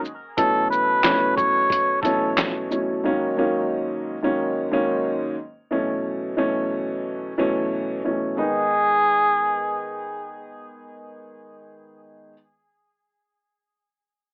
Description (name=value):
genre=hip hop, boom-bap hip-hop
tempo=90 BPM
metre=4/4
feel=swing 60% on 16ths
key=G# phrygian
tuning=A4 = 439 Hz
part: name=trip hop sampler-style drum kit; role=drums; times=0.0-2.9 s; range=handclaps, hi-hat, kick drum, shaker, snare drum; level=-26 LUFS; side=equal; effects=none
part: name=trumpet with cup mute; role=melody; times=0.4-2.3, 8.4-10.3 s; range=G#4 to C#5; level=-23 LUFS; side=equal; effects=high-pass filter, low-pass filter, tape echo
part: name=dark baby grand piano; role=accompaniment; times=0.4-12.3 s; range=G#2 to D#4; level=-26 LUFS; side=equal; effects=high-pass filter, low-pass filter
room=light reverb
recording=telephone sound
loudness=-22 LUFS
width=mono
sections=0.0-8.4 A section; 8.4-11.0 B section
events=none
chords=0.4 B9sus4; 3.0 G#9sus4; 5.7 B9sus4; 8.4 G#m